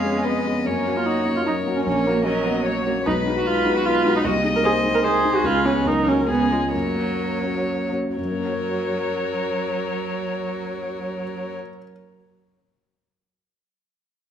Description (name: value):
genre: quick classical-period movement for piano quintet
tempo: 117-152 BPM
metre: 3/4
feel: straight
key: F# major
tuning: A4 = 440 Hz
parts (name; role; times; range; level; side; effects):
- dark violin; melody; 0.0-11.5 s; F#4 to D#5; -28 LUFS; left 7 dB; none
- rich violin; second line; 0.0-11.5 s; G#4 to E#5; -28 LUFS; left 3 dB; none
- warm cello; second line; 0.0-11.5 s; F#3 to C#4; -30 LUFS; right 7 dB; none
- dark grand piano; accompaniment; 0.0-11.9 s; A#1 to C#5; -26 LUFS; left 2 dB; none
- dark viola; accompaniment; 0.0-11.6 s; F#3 to A#4; -24 LUFS; right 4 dB; none
room: wet recital hall reverb, RT60 1.6 s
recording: none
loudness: -19 LUFS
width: side -9 dB against mid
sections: 0.0-8.2 A section; 8.2-11.2 B section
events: slowing down 4.8-8.2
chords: 0.0 C#7; 0.7 F#; 1.9 F#/A#; 3.1 G#m7/B; 4.2 G#/B#; 5.4 C#7; 5.9 F#/C#; 6.3 C#7; 6.7 F#